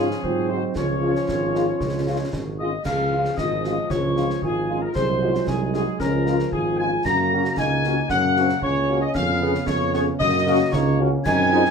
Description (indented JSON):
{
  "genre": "military-style march for wind band",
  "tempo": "114 BPM",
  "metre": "2/4",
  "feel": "straight",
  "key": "Db major",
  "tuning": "A4 = 440 Hz",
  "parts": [
    { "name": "dark trumpet section", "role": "melody", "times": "0.0-11.7 s", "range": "Ab4 to Bb5", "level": "-28 LUFS", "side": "left 3 dB", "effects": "none" },
    { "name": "mellow woodwind section", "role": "second line", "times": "0.0-11.7 s", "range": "F4 to Bb5", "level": "-27 LUFS", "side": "equal", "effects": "none" },
    { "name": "warm French horn section", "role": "accompaniment", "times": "0.0-11.6 s", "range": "Ab3 to Ab4", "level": "-26 LUFS", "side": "left 2 dB", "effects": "none" },
    { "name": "warm trombone section", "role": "sustained chords", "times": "0.0-11.7 s", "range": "Db3 to Db4", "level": "-29 LUFS", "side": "right 2 dB", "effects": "none" },
    { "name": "mellow tuba", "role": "bass", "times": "0.0-11.7 s", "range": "Ab1 to Ab2", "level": "-25 LUFS", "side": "right 2 dB", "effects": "none" },
    { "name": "concert snare drum, concert bass drum and clash cymbals", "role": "drums", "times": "0.1-11.7 s", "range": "none", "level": "-32 LUFS", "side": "left 1 dB", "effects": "none" },
    { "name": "warm euphonium", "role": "second line", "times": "0.2-11.6 s", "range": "C4 to Ab4", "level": "-28 LUFS", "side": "equal", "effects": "none" },
    { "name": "mellow wooden piccolo", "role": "second line", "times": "2.6-11.7 s", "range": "Ab5 to Bb6", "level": "-29 LUFS", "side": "left 2 dB", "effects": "none" }
  ],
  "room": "moderate small room reverb, RT60 0.5 s",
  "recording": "minimal, uncompressed stereo recording",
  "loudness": "-19 LUFS",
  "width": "side -6 dB against mid",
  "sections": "0.0-2.9 A section; 2.9-11.7 A section",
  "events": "none",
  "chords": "0.2 Ab7; 0.8 Db; 5.0 Ab7/C; 6.0 Db; 7.1 Gb; 9.2 Db7/F; 10.2 Gb",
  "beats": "0.24 | 0.77 1.29 | 1.81 2.34 | 2.86 3.39 | 3.91 4.43 | 4.96 5.48 | 6.01 6.53 | 7.05 7.58 | 8.10 8.63 | 9.15 9.68 | 10.20 10.73 | 11.25"
}